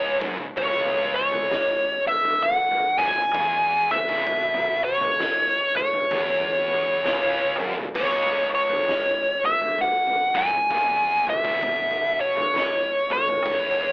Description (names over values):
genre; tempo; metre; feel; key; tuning
stoner and doom metal; 65 BPM; 4/4; swing 61% on 8ths; C# minor; A4 = 440 Hz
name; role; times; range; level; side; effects
fuzz lead guitar; melody; 0.0-13.9 s; C#5 to G#5; -23 LUFS; equal; wah, distortion
thick fuzz guitar; riff; 0.0-13.9 s; C#2 to B2; -35 LUFS; equal; distortion
thick fuzz guitar; riff; 0.0-13.9 s; C#2 to B2; -37 LUFS; equal; distortion
hollow-body short-scale fingered electric bass; bass; 0.0-13.9 s; C#1 to B1; -47 LUFS; equal; none
oversized low-tuned drum kit; drums; 0.2-13.9 s; crash cymbal, kick drum, snare drum, toms; -34 LUFS; equal; none
room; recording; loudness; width
light reverb; band playing live in one room, telephone sound; -23 LUFS; mono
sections
0.0-13.9 A section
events
drum fill 7.0-8.0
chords
0.0 C#m